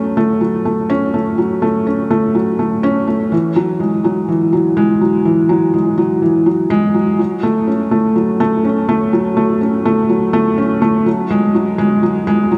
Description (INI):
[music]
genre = electronica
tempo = 124 BPM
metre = 4/4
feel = straight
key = F# minor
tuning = A4 = 440 Hz
[part]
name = felt-muted upright piano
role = solo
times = 0.0-12.6 s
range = E3 to C#4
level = -15 LUFS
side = equal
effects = none
[sound]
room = wet huge ambient reverb, RT60 4.5 s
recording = none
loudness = -15 LUFS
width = mono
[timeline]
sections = 0.0-12.6 A section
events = build-up 0.0-12.6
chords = none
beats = 0.42 0.90 | 1.39 1.87 2.35 2.84 | 3.32 3.80 4.29 4.77 | 5.26 5.74 6.22 6.71 | 7.19 7.67 8.16 8.64 | 9.13 9.61 10.09 10.58 | 11.06 11.55 12.03 12.51